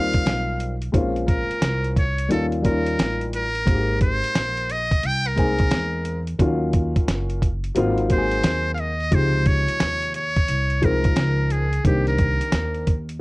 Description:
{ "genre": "hip hop, jazz-hop", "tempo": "88 BPM", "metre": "4/4", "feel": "swing 64% on 16ths", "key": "unclear", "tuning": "A4 = 441 Hz", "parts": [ { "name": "trumpet with metal mute", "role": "melody", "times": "0.0-13.1 s", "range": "G4 to G5", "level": "-25 LUFS", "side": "equal", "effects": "none" }, { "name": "dark upright piano", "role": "accompaniment", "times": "0.0-12.9 s", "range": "C3 to Bb4", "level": "-25 LUFS", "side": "left 2 dB", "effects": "none" }, { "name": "upright bass", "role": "bass", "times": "0.0-13.2 s", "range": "Gb1 to E2", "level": "-25 LUFS", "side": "equal", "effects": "transformer saturation" }, { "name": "dusty soul sampler-style drum kit", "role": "drums", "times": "0.1-13.2 s", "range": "hi-hat, kick drum, snare drum", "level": "-21 LUFS", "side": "equal", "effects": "none" } ], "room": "light reverb", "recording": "worn, warbling old tape, cassette tape, warbly pitch drift", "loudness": "-19 LUFS", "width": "side -22 dB against mid", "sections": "0.0-13.2 A section", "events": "muted trumpet solo 0.0-13.2", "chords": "0.0 Eb69; 0.9 Bbm9; 2.3 Eb9; 3.7 Abmaj9; 6.4 Ebm9; 7.8 Ab13; 9.1 Dbmaj9#11; 11.8 Cm7" }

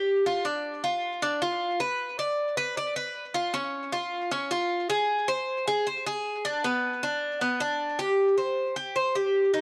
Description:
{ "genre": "latin", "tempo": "155 BPM", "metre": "4/4", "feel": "straight", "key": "unclear", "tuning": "A4 = 442 Hz", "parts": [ { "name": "Cuban tres", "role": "solo", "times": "0.0-9.6 s", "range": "B3 to D5", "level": "-28 LUFS", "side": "equal", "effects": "none" } ], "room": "light reverb", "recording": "dry, gritty hardware recording, transformer saturation, cassette tape", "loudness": "-28 LUFS", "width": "mono", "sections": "0.0-9.6 A section", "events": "none", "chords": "none" }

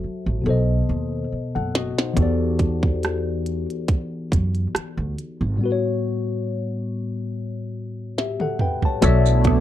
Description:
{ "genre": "R&B, neo-soul", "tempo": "70 BPM", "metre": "4/4", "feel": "swing 54% on 16ths", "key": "unclear", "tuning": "A4 = 440 Hz", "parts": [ { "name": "tine electric piano", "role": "accompaniment", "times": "0.0-9.6 s", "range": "A2 to A5", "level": "-24 LUFS", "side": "left 4 dB", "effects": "phaser" }, { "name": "upright bass", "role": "bass", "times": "0.0-9.6 s", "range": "F#1 to F#2", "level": "-22 LUFS", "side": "right 1 dB", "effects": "none" }, { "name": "glitchy drum kit", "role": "drums", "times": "1.8-9.6 s", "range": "hi-hat, kick drum, rim click, snare drum, toms", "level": "-21 LUFS", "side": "right 1 dB", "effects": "none" }, { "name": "chorused pulse-width pad", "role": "sustained chords", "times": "9.0-9.6 s", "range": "A3 to E4", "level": "-25 LUFS", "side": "right 7 dB", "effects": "none" }, { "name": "maracas", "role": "percussion", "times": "9.0-9.4 s", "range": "none", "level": "-33 LUFS", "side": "right 28 dB", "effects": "none" }, { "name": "vintage hollow-body jazz guitar", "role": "second line", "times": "9.5-9.6 s", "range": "B3", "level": "-23 LUFS", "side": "right 14 dB", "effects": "none" } ], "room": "little or no reverb", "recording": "dry, close 1970s-style studio recording", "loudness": "-20 LUFS", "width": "side -12 dB against mid", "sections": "0.0-9.0 A section", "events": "drum fill 0.5-2.2, 8.2-9.0", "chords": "0.5 B7b9; 2.2 Em11; 5.6 A13; 9.0 Bm11" }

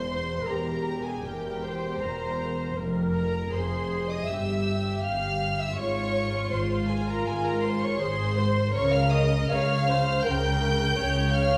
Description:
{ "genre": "classical, slow romantic movement for symphony orchestra", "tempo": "80 BPM", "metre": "4/4", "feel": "rubato", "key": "F minor", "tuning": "A4 = 438 Hz", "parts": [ { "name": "rich studio violin section", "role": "melody", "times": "0.0-11.6 s", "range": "G5 to G6", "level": "-35 LUFS", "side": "equal", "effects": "none" }, { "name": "warm studio violin section", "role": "second line", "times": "0.0-11.6 s", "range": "G4 to G5", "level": "-33 LUFS", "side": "equal", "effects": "none" }, { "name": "rich studio viola section", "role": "accompaniment", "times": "0.0-11.6 s", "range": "F4 to Db5", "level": "-34 LUFS", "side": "equal", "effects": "none" }, { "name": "dark studio double bass section", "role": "bass", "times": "0.0-11.6 s", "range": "E1 to Db2", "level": "-33 LUFS", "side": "equal", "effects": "none" }, { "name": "warm studio cello section", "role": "bass", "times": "0.0-11.6 s", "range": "E2 to Db3", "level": "-32 LUFS", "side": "equal", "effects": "none" } ], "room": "wet recital hall reverb, RT60 1.4 s", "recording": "recorded in a church or concert hall", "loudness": "-27 LUFS", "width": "mono", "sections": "0.0-11.6 A section", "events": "none", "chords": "0.0 C7/E; 2.8 Fm; 4.3 Em/G; 5.8 Fm/Ab; 8.7 Bbm/Db" }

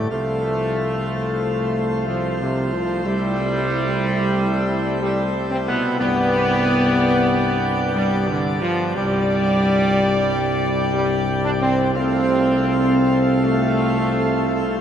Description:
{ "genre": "classical", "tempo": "61 BPM", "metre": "3/4", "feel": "straight", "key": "unclear", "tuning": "A4 = 440 Hz", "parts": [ { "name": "mellow trumpet section", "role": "melody", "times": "0.0-14.8 s", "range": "A3 to F5", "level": "-26 LUFS", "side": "left 1 dB", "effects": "none" }, { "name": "pipe organ, plenum", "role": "sustained chords", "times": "0.0-14.8 s", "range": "G2 to G4", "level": "-27 LUFS", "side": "right 1 dB", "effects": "none" }, { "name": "warm French horn section", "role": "sustained chords", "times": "0.0-14.8 s", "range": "B2 to D4", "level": "-24 LUFS", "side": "equal", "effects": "none" }, { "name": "warm trombone section", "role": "sustained chords", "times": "0.0-14.8 s", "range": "C3 to D4", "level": "-21 LUFS", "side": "equal", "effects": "none" }, { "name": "mellow tuba", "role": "bass", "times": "0.0-14.8 s", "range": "C2", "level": "-25 LUFS", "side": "equal", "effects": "none" } ], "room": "wet huge ambient reverb, RT60 7.3 s", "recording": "in a vast, echoing space", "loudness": "-17 LUFS", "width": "side -9 dB against mid", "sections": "0.0-14.8 A section", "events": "none", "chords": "0.1 F/C; 3.1 C; 6.0 G/C; 11.9 F/C" }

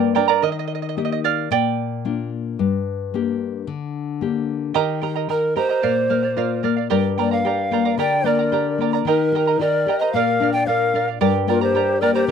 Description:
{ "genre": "andean folk, Andean ensemble", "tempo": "111 BPM", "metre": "2/4", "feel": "straight", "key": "G minor", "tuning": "A4 = 440 Hz", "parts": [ { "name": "charango", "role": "accompaniment", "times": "0.0-2.3, 4.7-12.3 s", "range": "G4 to Bb5", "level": "-22 LUFS", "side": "right 15 dB", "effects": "none" }, { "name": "nylon-string guitar", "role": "accompaniment", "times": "0.0-12.3 s", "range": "G2 to Bb4", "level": "-22 LUFS", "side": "left 8 dB", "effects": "none" }, { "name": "polished pan flute", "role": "melody", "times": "5.3-12.3 s", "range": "Bb4 to G5", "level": "-20 LUFS", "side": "right 1 dB", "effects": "none" }, { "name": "breathy large quena", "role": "second line", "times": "8.0-12.3 s", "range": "Eb4 to D5", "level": "-23 LUFS", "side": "left 9 dB", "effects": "none" } ], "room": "little or no reverb", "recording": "dry, close 1970s-style studio recording", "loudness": "-18 LUFS", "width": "side -7 dB against mid", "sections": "0.4-4.8 A section; 4.8-12.3 B section", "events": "charango solo 0.4-4.8", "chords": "0.4 Eb; 1.5 Bb; 2.6 Gm; 4.8 Eb; 5.8 Bb; 6.9 Gm; 9.1 Eb; 10.1 Bb; 11.2 Gm" }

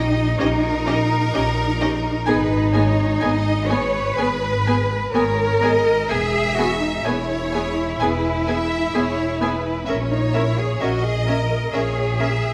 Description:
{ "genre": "classical, slow romantic movement for string orchestra", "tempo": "64 BPM", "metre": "4/4", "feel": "rubato", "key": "G# minor", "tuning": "A4 = 440 Hz", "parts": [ { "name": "warm studio violin section", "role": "second line", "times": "0.0-12.5 s", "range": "A#4 to E5", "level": "-29 LUFS", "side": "equal", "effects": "none" }, { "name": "warm studio cello section", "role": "bass", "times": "0.0-12.5 s", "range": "C#4 to C#5", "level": "-24 LUFS", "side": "equal", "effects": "none" }, { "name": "warm studio double bass section", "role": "bass", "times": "0.0-12.5 s", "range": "E1 to A#1", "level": "-26 LUFS", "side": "equal", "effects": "none" }, { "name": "warm studio violin section", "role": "melody", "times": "0.4-12.3 s", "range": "D#5 to G#5", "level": "-33 LUFS", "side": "equal", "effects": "none" }, { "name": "rich studio viola section", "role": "accompaniment", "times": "0.4-12.3 s", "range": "B3 to A#4", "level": "-29 LUFS", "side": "equal", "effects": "none" } ], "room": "moderate scoring stage reverb, RT60 1.6 s", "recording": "none", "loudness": "-20 LUFS", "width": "mono", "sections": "0.0-12.5 A section", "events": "none", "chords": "0.0 D#7/A#; 2.3 G#m; 6.1 E; 9.9 A#m7b5" }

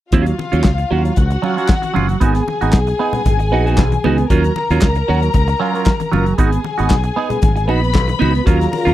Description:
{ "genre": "disco", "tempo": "115 BPM", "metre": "4/4", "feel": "straight", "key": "Eb minor", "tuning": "A4 = 443 Hz", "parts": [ { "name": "dark studio string section", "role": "second line", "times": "0.1-8.9 s", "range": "F4 to Cb6", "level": "-21 LUFS", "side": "left 4 dB", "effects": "none" }, { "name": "semi-hollow electric guitar", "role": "accompaniment", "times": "0.1-8.9 s", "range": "Gb3 to Ab4", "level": "-19 LUFS", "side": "right 7 dB", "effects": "phaser" }, { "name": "fingered electric bass", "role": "bass", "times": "0.1-8.9 s", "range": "Gb1 to Eb2", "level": "-17 LUFS", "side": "equal", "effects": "none" }, { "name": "damped 70s drum kit", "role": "drums", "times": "0.1-8.9 s", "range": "handclaps, hi-hat, kick drum, snare drum", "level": "-15 LUFS", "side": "equal", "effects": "none" }, { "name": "congas", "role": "percussion", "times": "0.4-8.9 s", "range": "none", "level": "-25 LUFS", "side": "left 6 dB", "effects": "none" }, { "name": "mellow French horn section", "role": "sustained chords", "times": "8.5-8.9 s", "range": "Db3 to F4", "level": "-19 LUFS", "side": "left 2 dB", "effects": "none" } ], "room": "little or no reverb", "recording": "dry, close 1970s-style studio recording", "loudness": "-13 LUFS", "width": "side -14 dB against mid", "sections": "0.1-8.9 A section", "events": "none", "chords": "0.1 Ebm9; 2.2 Abm7; 4.3 Ebm9; 6.4 Abm7" }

